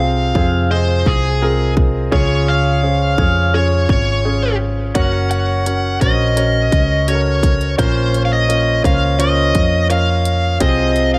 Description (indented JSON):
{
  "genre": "piano-driven pop",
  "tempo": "85 BPM",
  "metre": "4/4",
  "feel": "straight",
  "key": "F phrygian",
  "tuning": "A4 = 440 Hz",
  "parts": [
    { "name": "smooth overdriven lead guitar", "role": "melody", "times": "0.0-11.2 s", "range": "Ab4 to Gb5", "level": "-22 LUFS", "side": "equal", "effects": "none" },
    { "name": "clear concert grand piano", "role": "accompaniment", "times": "0.0-11.2 s", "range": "Bb2 to Eb5", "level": "-22 LUFS", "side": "equal", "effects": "none" },
    { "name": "hollow-body short-scale picked electric bass", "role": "bass", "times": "0.0-11.2 s", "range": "Gb1 to F2", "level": "-20 LUFS", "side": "equal", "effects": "none" },
    { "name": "house drum kit", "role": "drums", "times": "0.4-11.1 s", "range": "hi-hat, kick drum", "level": "-20 LUFS", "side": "equal", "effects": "none" }
  ],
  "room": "light reverb",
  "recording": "none",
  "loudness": "-16 LUFS",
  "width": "mono",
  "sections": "0.0-11.2 A section",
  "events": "none",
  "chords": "0.0 Fm/C; 2.1 Db; 5.0 Gb; 7.8 Bbmadd9; 10.6 Fm/C"
}